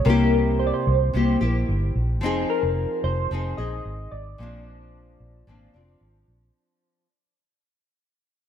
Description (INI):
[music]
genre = indie pop, bedroom pop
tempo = 111 BPM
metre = 4/4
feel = straight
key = unclear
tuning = A4 = 440 Hz
[part]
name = soft electric-piano-like synth keys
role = melody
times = 0.0-6.0 s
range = Bb4 to Eb5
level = -27 LUFS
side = equal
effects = phaser, wide subtle chorus, tape echo
[part]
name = nylon-string guitar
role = accompaniment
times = 0.0-7.1 s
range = Bb2 to Ab4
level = -25 LUFS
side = left 2 dB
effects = wide subtle chorus, vibrato effect
[part]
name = vintage muted fingered electric bass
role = bass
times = 0.1-6.5 s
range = F1 to C2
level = -24 LUFS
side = equal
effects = none
[sound]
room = moderate lush hall reverb, RT60 1.7 s, small room ambience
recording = dreamy mix soaked in reverb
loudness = -20 LUFS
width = side -9 dB against mid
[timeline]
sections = 0.0-6.5 A section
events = fade-out 0.0-6.5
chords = 0.1 C7; 2.2 Fm7; 4.4 Bbadd9